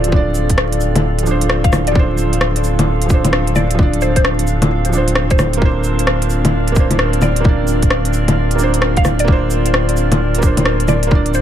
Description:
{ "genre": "future garage", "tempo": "131 BPM", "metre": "4/4", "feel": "swing 64% on 16ths", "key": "D minor", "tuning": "A4 = 440 Hz", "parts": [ { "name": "mallet-like synth pluck", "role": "melody", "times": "0.0-11.4 s", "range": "C5 to F5", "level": "-24 LUFS", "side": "left 1 dB", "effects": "analog chorus, ping-pong delay" }, { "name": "felt-muted upright piano", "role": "accompaniment", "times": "0.0-11.4 s", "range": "F3 to D5", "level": "-21 LUFS", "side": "right 4 dB", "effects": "sidechain pumping, ping-pong delay" }, { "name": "warbly tape-like pad", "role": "sustained chords", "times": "0.0-11.4 s", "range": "C4 to F5", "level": "-22 LUFS", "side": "left 1 dB", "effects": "chorus, built-in reverb, vintage 12-bit sampler grit, sidechain pumping" }, { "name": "soft dub sub bass", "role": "bass", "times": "0.0-11.4 s", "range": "D1", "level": "-17 LUFS", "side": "equal", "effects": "sidechain pumping" }, { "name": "organic electronic drum kit", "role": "drums", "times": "0.0-11.4 s", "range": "bongos, cabasa, hi-hat, rim click", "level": "-18 LUFS", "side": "left 1 dB", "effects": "overdrive" }, { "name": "drifting glass-harmonics texture", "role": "texture", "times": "0.0-11.4 s", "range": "F5", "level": "-29 LUFS", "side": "right 7 dB", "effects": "chorus, built-in reverb" }, { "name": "electronic kick drum", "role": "drums", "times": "0.1-11.2 s", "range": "none", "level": "-13 LUFS", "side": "equal", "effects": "overdrive" } ], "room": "digital ambience", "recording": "vinyl crackle", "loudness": "-12 LUFS", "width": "side -10 dB against mid", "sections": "0.0-11.4 A section", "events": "none", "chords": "0.0 Dm7; 5.6 Bbadd9/D" }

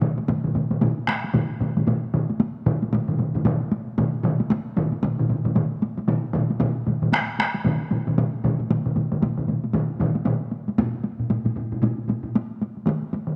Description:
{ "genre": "japanese traditional, taiko drum ensemble", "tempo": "115 BPM", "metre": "4/4", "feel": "swing 60% on 16ths", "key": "none", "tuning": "none", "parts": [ { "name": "solo taiko drums", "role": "percussion", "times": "0.0-13.4 s", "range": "none", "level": "-28 LUFS", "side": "equal", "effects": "none" }, { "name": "taiko ensemble", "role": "percussion", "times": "0.0-13.3 s", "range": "none", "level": "-28 LUFS", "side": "equal", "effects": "none" }, { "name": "taiko ensemble", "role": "percussion", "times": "0.0-12.3 s", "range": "none", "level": "-28 LUFS", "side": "equal", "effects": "none" } ], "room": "wet echo chamber reverb, RT60 2.1 s", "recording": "none", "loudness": "-24 LUFS", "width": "mono", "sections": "0.0-10.8 A section; 10.8-13.4 B section", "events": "none", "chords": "none" }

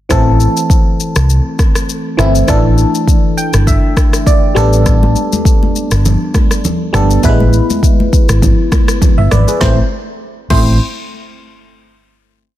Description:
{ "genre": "afrobeats", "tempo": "101 BPM", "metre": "4/4", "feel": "swing 55% on 16ths", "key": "A minor", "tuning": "A4 = 441 Hz", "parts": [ { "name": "barking FM electric piano", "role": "accompaniment", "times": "0.1-10.8 s", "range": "E3 to G5", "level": "-15 LUFS", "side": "equal", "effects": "chorus, phaser" }, { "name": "hollow-body short-scale fingered electric bass", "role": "bass", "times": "0.1-10.8 s", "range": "G1 to C2", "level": "-11 LUFS", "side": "equal", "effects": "none" }, { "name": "afro-pop drum kit", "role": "drums", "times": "0.1-10.7 s", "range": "crash cymbal, kick drum, rim click, shaker, snare drum", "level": "-12 LUFS", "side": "equal", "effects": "none" }, { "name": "congas", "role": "percussion", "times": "5.0-10.8 s", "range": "none", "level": "-19 LUFS", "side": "equal", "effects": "none" } ], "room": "little or no reverb", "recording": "dense, heavily limited modern master", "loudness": "-9 LUFS", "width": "side -13 dB against mid", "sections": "0.1-9.6 verse; 9.6-12.0 final chord", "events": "FM electric piano fill 3.1-4.9", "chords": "0.1 Am; 2.5 Dsus2/A; 4.6 Gadd9/A; 7.2 E; 9.6 Am" }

